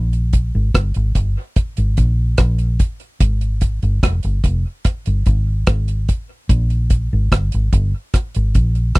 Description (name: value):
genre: dub reggae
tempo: 73 BPM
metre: 4/4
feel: straight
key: unclear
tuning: A4 = 440 Hz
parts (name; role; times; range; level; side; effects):
- vintage muted fingered electric bass; bass; 0.0-9.0 s; F1 to Bb1; -16 LUFS; equal; none
- deep reggae drum kit; drums; 0.1-9.0 s; hi-hat, kick drum, rim click; -16 LUFS; equal; none
room: little or no reverb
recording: dry, close 1970s-style studio recording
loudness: -15 LUFS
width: side -24 dB against mid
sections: 0.0-9.0 A section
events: none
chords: none